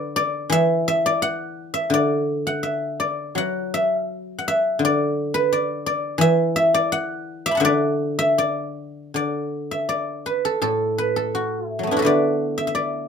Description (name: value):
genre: chinese traditional, Chinese solo plucked strings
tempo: 76-87 BPM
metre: 2/4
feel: rubato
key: D gong mode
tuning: A4 = 440 Hz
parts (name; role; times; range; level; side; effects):
- guzheng; solo; 0.0-13.1 s; A2 to D6; -20 LUFS; equal; none
room: light reverb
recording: minimal, uncompressed stereo recording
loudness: -19 LUFS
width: side -7 dB against mid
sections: 0.0-9.2 A section; 9.2-13.1 B section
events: none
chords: none